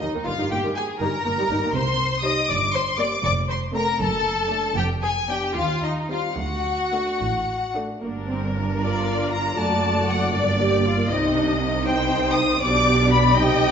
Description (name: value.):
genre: quick classical-period movement for string orchestra.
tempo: 79 BPM (dotted quarters).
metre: 6/8.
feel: rubato.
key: G minor.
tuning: A4 = 439 Hz.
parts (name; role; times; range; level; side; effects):
rich chamber violin section; melody; 0.0-13.7 s; D5 to Eb6; -24 LUFS; left 4 dB; none.
rich chamber violin section; second line; 0.0-13.7 s; Eb4 to Eb5; -26 LUFS; left 2 dB; none.
warm studio viola section; accompaniment; 0.0-13.7 s; Eb3 to G4; -26 LUFS; right 1 dB; none.
rich chamber double bass section; bass; 0.0-13.7 s; F1 to Eb2; -28 LUFS; right 3 dB; none.
warm chamber cello section; bass; 0.0-13.7 s; D2 to C3; -28 LUFS; right 2 dB; none.
room: wet recital hall reverb, RT60 1.4 s.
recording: recorded in a church or concert hall, nothing above 7.8 kHz.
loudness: -20 LUFS.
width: side -7 dB against mid.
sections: 0.0-8.0 A section; 8.0-13.7 B section.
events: none.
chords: 0.3 Eb/G; 1.7 Cm; 2.5 Gm; 3.2 F; 4.0 D/F#; 4.8 Fm69; 5.6 Cm/Eb; 6.4 D; 8.0 Gm; 9.6 D/F#; 10.3 Gm; 11.1 Cm; 12.6 G/B.